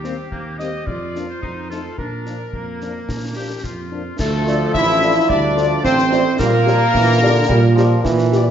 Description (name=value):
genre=military-style march for wind band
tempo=109 BPM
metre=2/4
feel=straight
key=Bb major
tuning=A4 = 439 Hz
part: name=warm trumpet section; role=melody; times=0.0-8.3 s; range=G4 to E5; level=-26 LUFS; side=left 1 dB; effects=none
part: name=warm woodwind section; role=second line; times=0.0-8.3 s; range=Bb3 to E5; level=-25 LUFS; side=left 2 dB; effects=none
part: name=dark French horn section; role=accompaniment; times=0.0-8.4 s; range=F3 to D5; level=-26 LUFS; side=left 6 dB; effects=none
part: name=dark tuba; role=bass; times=0.0-8.5 s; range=A1 to Bb2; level=-20 LUFS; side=right 2 dB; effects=none
part: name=concert snare drum, concert bass drum and clash cymbals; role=drums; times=0.0-8.4 s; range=none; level=-27 LUFS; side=left 1 dB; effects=none
part: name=clear euphonium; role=second line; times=4.2-8.5 s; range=D3 to A3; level=-22 LUFS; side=right 3 dB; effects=none
part: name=mellow hollow flute section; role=second line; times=4.2-8.3 s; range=A4 to E5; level=-26 LUFS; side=left 1 dB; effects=none
part: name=mellow trombone section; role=sustained chords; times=4.2-8.3 s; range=A3 to E4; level=-18 LUFS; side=right 1 dB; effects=none
room=wet scoring stage reverb, RT60 1.5 s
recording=nothing above 7.5 kHz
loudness=-14 LUFS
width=side -9 dB against mid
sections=0.0-4.2 A section; 4.2-8.5 B section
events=none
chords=0.0 Cm7/Eb; 0.9 Bb/F; 1.4 F7; 2.0 Bb; 4.2 Dm; 6.4 Gm/Bb